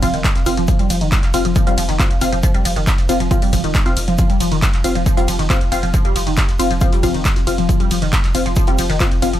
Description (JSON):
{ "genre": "driving peak-time techno", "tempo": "137 BPM", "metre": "4/4", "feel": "straight", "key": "unclear", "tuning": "A4 = 439 Hz", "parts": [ { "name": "resonant blip pluck", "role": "riff", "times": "0.0-9.4 s", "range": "Eb3 to G3", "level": "-22 LUFS", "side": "equal", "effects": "phaser, overdrive, wide subtle chorus, sidechain pumping, digital delay" }, { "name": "filtered dub chord stab", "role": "stabs", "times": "0.0-9.3 s", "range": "C4 to F5", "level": "-21 LUFS", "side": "left 2 dB", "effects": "phaser, sidechain pumping, digital delay" }, { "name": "saturated sub bass", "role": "bass", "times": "0.0-9.4 s", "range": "F1", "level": "-22 LUFS", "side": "equal", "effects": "overdrive, sidechain pumping, low-pass filter" }, { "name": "cloth-damped thuddy drum kit", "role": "drums", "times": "0.0-9.3 s", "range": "hi-hat, shaker, snare drum", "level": "-34 LUFS", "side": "equal", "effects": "sidechain pumping on hats, high-pass filter on hats, high-pass filter on snare, sidechain pumping on perc, high-pass filter on perc, high-pass filter on room" }, { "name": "electronic kick drum", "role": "drums", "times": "0.0-9.1 s", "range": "none", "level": "-17 LUFS", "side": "equal", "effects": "none" }, { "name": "punchy analog drum machine", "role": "drums", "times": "0.0-9.4 s", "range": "handclaps, hi-hat, ride cymbal", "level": "-24 LUFS", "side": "equal", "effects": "none" } ], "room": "little or no reverb", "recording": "none", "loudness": "-14 LUFS", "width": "side -12 dB against mid", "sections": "0.0-9.4 A section", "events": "none", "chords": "0.0 F5" }